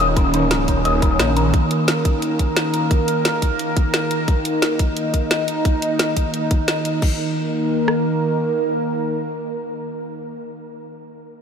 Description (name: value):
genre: dark technical drum and bass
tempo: 175 BPM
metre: 4/4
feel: straight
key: unclear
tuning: A4 = 443 Hz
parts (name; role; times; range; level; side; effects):
- sweeping resonant pad; sustained chords; 0.0-10.2 s; Eb3 to Bb4; -20 LUFS; right 1 dB; chorus, phaser, sidechain pumping
- electric guitar with an envelope filter; arpeggios; 0.0-1.4 s; Eb4 to Eb5; -24 LUFS; left 3 dB; lush chorus, sidechain pumping, ping-pong delay
- phased detuned saw bass; bass; 0.0-1.5 s; Eb1 to Bb1; -21 LUFS; equal; phaser, overdrive, sidechain pumping
- drum and bass drum kit; drums; 0.2-8.0 s; kick drum, rim click; -18 LUFS; equal; none
- drum and bass drum kit; drums; 0.2-7.1 s; crash cymbal, hi-hat, snare drum; -24 LUFS; equal; none
room: moderate huge ambient reverb, RT60 8.1 s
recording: dreamy mix soaked in reverb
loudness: -17 LUFS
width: side -7 dB against mid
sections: 0.0-7.0 A section; 7.0-9.8 B section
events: none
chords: 0.0 Eb5